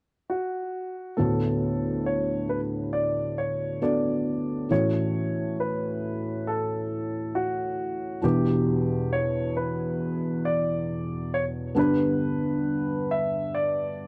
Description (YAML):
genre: pop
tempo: 68 BPM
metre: 4/4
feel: straight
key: D major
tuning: A4 = 441 Hz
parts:
  - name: warm grand piano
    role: melody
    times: 0.3-14.1 s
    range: F#4 to E5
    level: -32 LUFS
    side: equal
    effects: none
  - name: felt-muted upright piano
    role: accompaniment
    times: 1.2-14.1 s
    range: D2 to B4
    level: -28 LUFS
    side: equal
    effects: none
room: small room ambience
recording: dry, close 1970s-style studio recording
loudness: -27 LUFS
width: mono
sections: 0.0-1.2 A section; 1.2-14.1 B section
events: none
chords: 0.0 N.C.; 1.2 D6; 4.7 A6; 8.2 Em7; 11.8 G